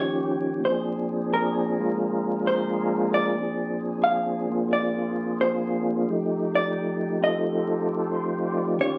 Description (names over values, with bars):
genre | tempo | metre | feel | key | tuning
jazz | 88 BPM | 4/4 | swing 69% on 8ths | Bb mixolydian | A4 = 438 Hz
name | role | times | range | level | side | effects
percussive tonewheel organ | melody | 0.0-9.0 s | Eb2 to D5 | -27 LUFS | equal | slow rotary speaker, chorus vibrato
hollow-body jazz guitar | accompaniment | 0.0-9.0 s | Bb4 to F5 | -29 LUFS | equal | none
room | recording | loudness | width
wet studio reverb, RT60 0.6 s | very old 78 rpm record, vinyl crackle | -25 LUFS | mono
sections
0.0-9.0 A section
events
hollow-body jazz guitar solo 0.0-9.0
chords
0.0 Eb7; 0.6 Bb7; 6.1 F7